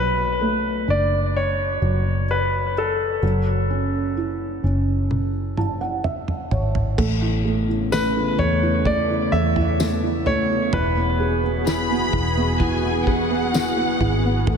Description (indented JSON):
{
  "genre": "pop ballad",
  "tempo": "64 BPM",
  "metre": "4/4",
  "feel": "straight",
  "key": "A major",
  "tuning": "A4 = 439 Hz",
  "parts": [
    { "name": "clear concert grand piano", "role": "melody", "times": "0.0-13.5 s", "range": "A4 to E5", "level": "-24 LUFS", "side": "left 1 dB", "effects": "ping-pong delay" },
    { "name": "felt-muted upright piano", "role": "accompaniment", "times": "0.0-14.6 s", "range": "B2 to A5", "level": "-25 LUFS", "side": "right 4 dB", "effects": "analog chorus" },
    { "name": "vintage muted fingered electric bass", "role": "bass", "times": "0.0-14.6 s", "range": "E1 to E2", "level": "-24 LUFS", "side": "left 1 dB", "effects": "none" },
    { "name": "damped 70s drum kit", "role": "drums", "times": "5.1-14.6 s", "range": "crash cymbal, kick drum, snare drum, toms", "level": "-27 LUFS", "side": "equal", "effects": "none" },
    { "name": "lush unison pad", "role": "sustained chords", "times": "7.4-14.6 s", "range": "C#3 to G#4", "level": "-26 LUFS", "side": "left 2 dB", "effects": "chorus" },
    { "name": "tambourine", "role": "percussion", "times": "7.9-13.8 s", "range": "none", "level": "-38 LUFS", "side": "left 9 dB", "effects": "none" },
    { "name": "warm symphonic violin section", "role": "second line", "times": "11.7-14.6 s", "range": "F#5 to B5", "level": "-25 LUFS", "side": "left 2 dB", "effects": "none" }
  ],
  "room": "moderate cathedral reverb, RT60 5.5 s",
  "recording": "dreamy mix soaked in reverb",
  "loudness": "-19 LUFS",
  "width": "side -6 dB against mid",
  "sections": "0.0-7.0 A section; 7.0-14.6 B section",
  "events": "felt piano fill 5.1-7.0; drum fill 5.1-7.0",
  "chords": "0.0 Bm7; 3.2 F#m7; 7.0 Aadd9; 10.7 Eadd9"
}